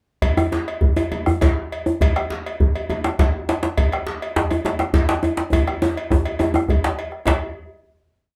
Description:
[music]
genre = west african traditional, West African drum ensemble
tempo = 136 BPM (dotted quarters)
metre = 12/8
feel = straight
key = none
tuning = none
[part]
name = bombo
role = percussion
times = 0.2-7.4 s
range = none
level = -22 LUFS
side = equal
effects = none
[part]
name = cowbell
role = percussion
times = 0.2-7.4 s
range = none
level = -31 LUFS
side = equal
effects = none
[part]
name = djembe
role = percussion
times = 0.2-7.4 s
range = none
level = -27 LUFS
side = equal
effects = none
[part]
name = djembe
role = percussion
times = 0.4-7.4 s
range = none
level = -23 LUFS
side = equal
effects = none
[sound]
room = light reverb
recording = close, detailed microphones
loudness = -21 LUFS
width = mono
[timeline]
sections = 0.2-7.3 A section; 7.3-8.4 final hit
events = speeding up 0.2-8.4; drum fill 5.5-7.3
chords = none

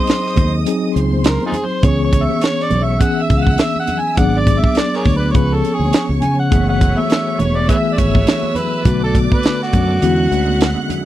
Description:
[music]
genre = lush 1970s-style soul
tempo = 103 BPM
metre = 4/4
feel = swing 58% on 16ths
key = unclear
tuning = A4 = 440 Hz
[part]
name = overdriven harmonica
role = melody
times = 0.0-11.0 s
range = D#4 to G#5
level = -20 LUFS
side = equal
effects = none
[part]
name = warm studio violin section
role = second line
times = 0.0-11.1 s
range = B#4 to F#6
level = -27 LUFS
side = right 3 dB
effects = none
[part]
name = mellow tine electric piano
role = accompaniment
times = 0.0-11.1 s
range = D3 to G#4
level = -19 LUFS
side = left 2 dB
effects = medium stereo tremolo
[part]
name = tight funk drum kit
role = drums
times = 0.1-11.1 s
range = hi-hat, kick drum, snare drum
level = -16 LUFS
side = equal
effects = none
[part]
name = congas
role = percussion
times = 0.1-11.1 s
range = none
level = -26 LUFS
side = right 4 dB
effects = none
[part]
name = fingered electric bass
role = bass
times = 0.4-10.7 s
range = E1 to C#3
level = -17 LUFS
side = equal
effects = none
[part]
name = overdriven tonewheel organ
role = sustained chords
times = 6.5-11.1 s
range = D3 to B4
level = -30 LUFS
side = equal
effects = slow rotary speaker, chorus vibrato
[sound]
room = little or no reverb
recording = dry, close 1970s-style studio recording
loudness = -13 LUFS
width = side -13 dB against mid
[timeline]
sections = 0.0-11.1 A section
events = harmonica solo 0.0-11.1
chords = 0.0 G#7; 1.8 C#m7; 4.2 G#m7b5; 5.3 C#7; 6.5 F#m11; 8.9 Bm7; 10.0 E13

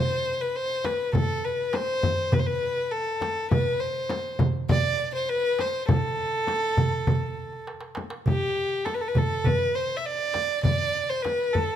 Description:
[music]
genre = Turkish makam ensemble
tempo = 101 BPM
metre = 4/4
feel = straight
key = A makam ussak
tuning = A4 = 442 Hz
[part]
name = warm violin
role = melody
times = 0.0-11.8 s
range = G4 to E5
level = -26 LUFS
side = equal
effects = none
[part]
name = darbuka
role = percussion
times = 0.3-11.8 s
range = none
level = -28 LUFS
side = right 3 dB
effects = none
[part]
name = frame drum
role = percussion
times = 0.8-11.7 s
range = none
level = -28 LUFS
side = left 3 dB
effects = none
[sound]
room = moderate recital hall reverb, RT60 1.5 s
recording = close, detailed microphones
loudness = -23 LUFS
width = side -10 dB against mid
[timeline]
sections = 0.0-8.3 A section; 8.3-11.8 B section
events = drum fill 7.7-8.3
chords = none

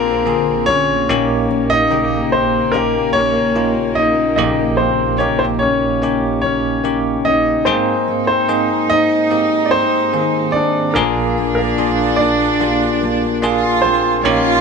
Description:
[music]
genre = pop ballad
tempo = 73 BPM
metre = 4/4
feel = straight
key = unclear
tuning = A4 = 441 Hz
[part]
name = warm concert grand piano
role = melody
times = 0.0-14.6 s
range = Bb3 to Eb5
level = -16 LUFS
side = left 1 dB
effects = none
[part]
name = dark chamber cello section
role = second line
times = 0.0-14.6 s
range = Bb3 to F4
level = -22 LUFS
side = right 3 dB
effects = none
[part]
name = bell-like tine electric piano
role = accompaniment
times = 0.0-14.6 s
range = Bb1 to Ab4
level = -18 LUFS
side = equal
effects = medium stereo tremolo
[part]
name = fingerpicked steel-string acoustic guitar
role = arpeggios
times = 0.0-14.6 s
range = Bb2 to G4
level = -27 LUFS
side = left 3 dB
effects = none
[part]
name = downlifter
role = sound effects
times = 0.0-1.1 s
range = none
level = barely audible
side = none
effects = none
[sound]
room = moderate studio reverb, RT60 0.5 s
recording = band playing live in one room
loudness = -13 LUFS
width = side -5 dB against mid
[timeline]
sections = 0.0-14.6 A section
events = none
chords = 0.0 Bb7; 1.1 Eb7/Bb; 7.7 Abadd9; 11.0 Bb7

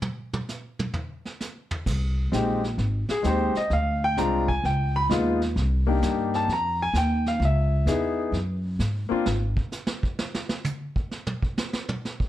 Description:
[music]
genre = jazz piano trio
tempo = 130 BPM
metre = 4/4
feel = swing 68% on 8ths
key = unclear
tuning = A4 = 438 Hz
[part]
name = vintage brush drum kit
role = drums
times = 0.0-12.3 s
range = brushed snare drum, crash cymbal, hi-hat, kick drum, snare drum, toms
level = -30 LUFS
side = right 1 dB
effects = none
[part]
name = upright bass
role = bass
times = 1.9-9.6 s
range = Ab1 to Ab2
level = -25 LUFS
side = equal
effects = none
[part]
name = warm concert grand piano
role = melody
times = 2.3-9.3 s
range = Ab3 to Cb6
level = -24 LUFS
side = left 2 dB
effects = plate reverb
[sound]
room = light reverb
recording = none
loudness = -23 LUFS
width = side -13 dB against mid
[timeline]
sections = 0.0-1.9 A section; 1.9-12.3 A section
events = grand piano solo 0.0-12.3; drum solo 0.0-1.9, 9.3-12.3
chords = 0.0 N.C.; 1.9 Abmaj9; 3.7 Dm7b5; 4.6 Db9; 5.6 Cm9; 7.4 Dbm7; 8.3 Gbsus2; 9.3 N.C.

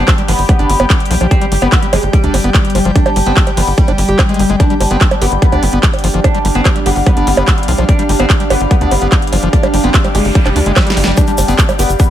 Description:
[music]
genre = psychedelic trance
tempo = 146 BPM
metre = 4/4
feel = straight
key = unclear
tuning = A4 = 440 Hz
[part]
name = oud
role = melody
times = 0.0-12.1 s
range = G3 to D4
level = -18 LUFS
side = left 2 dB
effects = phaser, sidechain pumping, tape echo
[part]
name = evolving wavetable pad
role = sustained chords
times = 0.0-12.1 s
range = G3 to G4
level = -22 LUFS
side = right 4 dB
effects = chorus, built-in reverb, sidechain pumping
[part]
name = overdriven acid bass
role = riff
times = 0.0-12.0 s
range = F3 to G4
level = -20 LUFS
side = moving between left 6 dB and right 5 dB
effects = distortion, auto-pan, sidechain pumping, tape echo
[part]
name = tight sequencer bass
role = bass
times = 0.0-12.0 s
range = F1 to D2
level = -15 LUFS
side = equal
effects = none
[part]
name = downlifter and noise sweep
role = sound effects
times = 0.0-1.3, 10.1-11.2 s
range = none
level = -31 LUFS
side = right 2 dB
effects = none
[part]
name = airy breathy pad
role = texture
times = 0.0-12.1 s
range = G4 to G5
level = -24 LUFS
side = equal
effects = chorus, sidechain pumping
[part]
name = big-room dance drum kit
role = drums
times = 0.1-12.1 s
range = bongos, handclaps, hi-hat, snare drum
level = -17 LUFS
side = right 2 dB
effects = none
[part]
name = electronic kick drum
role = drums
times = 0.1-12.1 s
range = none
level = -12 LUFS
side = equal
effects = none
[part]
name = tube shaker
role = percussion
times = 11.2-12.1 s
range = none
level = -25 LUFS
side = left 2 dB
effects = none
[sound]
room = digital ambience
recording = none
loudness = -9 LUFS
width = side -11 dB against mid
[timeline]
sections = 0.0-12.1 A section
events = noise sweep 10.1-11.2; drum fill 10.8-11.2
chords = 0.0 G5

